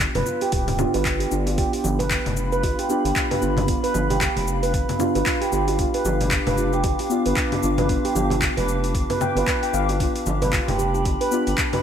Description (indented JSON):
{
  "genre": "organic downtempo",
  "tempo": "114 BPM",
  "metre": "4/4",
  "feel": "swing 58% on 16ths",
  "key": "unclear",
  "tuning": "A4 = 440 Hz",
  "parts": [
    { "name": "muted felt-like synth keys", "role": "accompaniment", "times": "0.0-11.8 s", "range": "B3 to F4", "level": "-27 LUFS", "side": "equal", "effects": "chorus, sidechain pumping, ping-pong delay" },
    { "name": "round analog bass", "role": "bass", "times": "0.0-11.5 s", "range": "D1 to G1", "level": "-26 LUFS", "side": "equal", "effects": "sidechain pumping" },
    { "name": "deep house drum kit", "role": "drums", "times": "0.0-11.8 s", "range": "cabasa, congas, handclaps, hi-hat", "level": "-27 LUFS", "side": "left 2 dB", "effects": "overdrive, small room ambience" },
    { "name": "electronic kick drum", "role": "drums", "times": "0.0-11.7 s", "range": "none", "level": "-27 LUFS", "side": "equal", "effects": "small room ambience" },
    { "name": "handpan", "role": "arpeggios", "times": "0.2-11.8 s", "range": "D4 to G5", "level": "-25 LUFS", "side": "right 3 dB", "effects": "ping-pong delay" },
    { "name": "congas and bongos", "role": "percussion", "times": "0.2-11.8 s", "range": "none", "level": "-31 LUFS", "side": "right 1 dB", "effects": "none" },
    { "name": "warbly tape-like pad", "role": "sustained chords", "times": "1.9-11.8 s", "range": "D4 to D6", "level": "-29 LUFS", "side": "left 2 dB", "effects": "chorus, built-in reverb, sidechain pumping" }
  ],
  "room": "light reverb",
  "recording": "none",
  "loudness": "-19 LUFS",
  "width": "side -8 dB against mid",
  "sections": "0.0-11.8 A section",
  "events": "none",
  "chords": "0.0 G7"
}